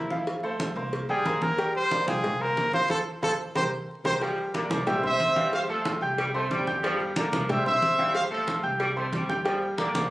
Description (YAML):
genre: latin, salsa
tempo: 183 BPM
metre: 4/4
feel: straight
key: unclear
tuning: A4 = 440 Hz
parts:
  - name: clear trumpet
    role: melody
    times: 0.0-4.1 s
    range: E4 to C5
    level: -27 LUFS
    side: equal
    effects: none
  - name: bright upright piano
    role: accompaniment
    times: 0.0-10.0 s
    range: F3 to G6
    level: -29 LUFS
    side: right 1 dB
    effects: none
  - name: upright bass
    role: bass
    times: 0.0-10.1 s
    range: G1 to F2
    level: -37 LUFS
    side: equal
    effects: none
  - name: congas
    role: percussion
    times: 0.1-10.1 s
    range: none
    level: -33 LUFS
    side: equal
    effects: none
  - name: cowbell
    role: percussion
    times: 0.3-9.9 s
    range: none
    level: -35 LUFS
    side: left 1 dB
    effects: none
  - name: mellow saxophone section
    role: second line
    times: 4.2-10.1 s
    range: D3 to A3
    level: -33 LUFS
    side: equal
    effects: none
  - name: warm trumpet section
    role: melody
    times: 4.6-10.1 s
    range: F4 to F5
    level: -26 LUFS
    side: equal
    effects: none
room: moderate plate reverb, RT60 3.0 s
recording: recorded on a phone in the room, club reverb, vinyl crackle, compression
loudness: -24 LUFS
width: side -17 dB against mid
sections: 0.0-4.2 A section; 4.2-10.1 B section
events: trumpet solo 0.0-4.2; band accent 2.9-4.2; drum fill 3.7-4.2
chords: 0.3 F; 0.9 C5; 1.6 Gm7; 2.2 C5; 2.9 F; 3.6 C5; 4.9 C; 5.5 F; 6.2 C5; 6.8 Gm7; 7.5 C; 8.1 F; 8.8 C5; 9.5 Gm7